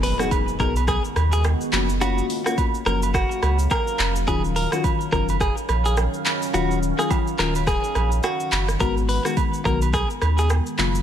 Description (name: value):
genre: afrobeats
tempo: 106 BPM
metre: 4/4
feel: swing 58% on 16ths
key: unclear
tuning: A4 = 440 Hz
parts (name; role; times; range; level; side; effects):
- direct-recorded clean electric guitar; melody; 0.0-10.5 s; F#4 to B4; -26 LUFS; equal; ping-pong delay
- mellow FM electric piano; accompaniment; 0.0-11.0 s; C#3 to G#4; -27 LUFS; left 6 dB; chorus
- deep dark ambient pad; sustained chords; 0.0-11.0 s; C#3 to E#5; -31 LUFS; right 3 dB; chorus, built-in reverb, sidechain pumping
- warm sub bass; bass; 0.0-11.0 s; D#1 to D#2; -22 LUFS; equal; none
- afro-pop drum kit; drums; 0.0-11.0 s; handclaps, hi-hat, kick drum, rim click, shaker; -25 LUFS; equal; none
- impact; sound effects; 0.0-2.0 s; none; -34 LUFS; equal; none
- agogo bells and woodblock; percussion; 0.3-10.9 s; none; -30 LUFS; right 11 dB; none
room: little or no reverb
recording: none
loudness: -19 LUFS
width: side -10 dB against mid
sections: 0.0-11.0 A section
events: impact 0.0-2.0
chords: 0.0 G#m7; 1.7 F#maj7; 4.3 D#m9; 8.8 G#m7